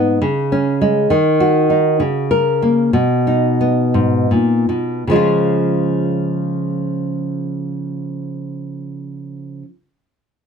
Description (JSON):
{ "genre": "folk, solo fingerstyle acoustic guitar", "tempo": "50-68 BPM (dotted quarters)", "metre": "6/8", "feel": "straight", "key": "Db mixolydian", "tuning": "A4 = 440 Hz", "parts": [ { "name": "nylon-string guitar", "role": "solo", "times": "0.0-9.7 s", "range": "Ab2 to Bb4", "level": "-15 LUFS", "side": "equal", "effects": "none" } ], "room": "light reverb", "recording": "none", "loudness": "-14 LUFS", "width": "side -6 dB against mid", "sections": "0.0-5.1 A section; 5.1-9.8 B section", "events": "slowing down 1.1-5.1", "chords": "0.2 Db5; 1.1 Ebm; 2.0 Bbm/Db; 2.9 Cb; 5.1 Db", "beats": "0.21 | 1.09 1.99 | 2.93 3.95 | 5.09 6.29 | 7.48 8.66" }